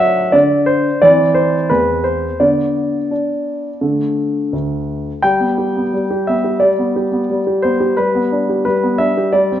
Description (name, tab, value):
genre	classical-period piano sonatina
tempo	87 BPM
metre	4/4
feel	straight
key	G major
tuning	A4 = 435 Hz
part	warm grand piano	solo	0.0-9.6 s	D2 to G5	-13 LUFS	equal	none
room	moderate recital hall reverb, RT60 1.3 s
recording	dark, warm production, nothing above 7.6 kHz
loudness	-13 LUFS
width	side -11 dB against mid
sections	0.0-5.2 A section; 5.2-9.6 B section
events	none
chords	0.0 D/F#; 1.0 C/E; 2.4 Bm/D; 3.8 D5; 5.2 G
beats	0.33 1.01 1.70 | 2.40 3.11 3.82 4.53 | 5.24 5.93 6.62 7.30 | 7.98 8.66 9.33